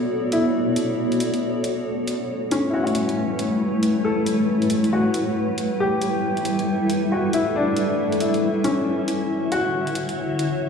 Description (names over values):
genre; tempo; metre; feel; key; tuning
future garage; 137 BPM; 4/4; swing 62% on 16ths; unclear; A4 = 437 Hz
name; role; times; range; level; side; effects
bright upright piano; accompaniment; 0.0-10.7 s; C#4 to A4; -24 LUFS; left 2 dB; tape echo
granular cloud pad; sustained chords; 0.0-10.7 s; D3 to E5; -22 LUFS; equal; built-in reverb
electronic hi-hat; drums; 0.3-10.5 s; none; -34 LUFS; right 1 dB; overdrive
room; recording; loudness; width
moderate huge ambient reverb, RT60 5.0 s; played on a big sound system in a bare room, stone room reverb; -20 LUFS; side -6 dB against mid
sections
0.0-10.7 A section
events
none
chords
0.0 Bm7; 1.9 A7; 5.4 G6; 8.9 Dmaj7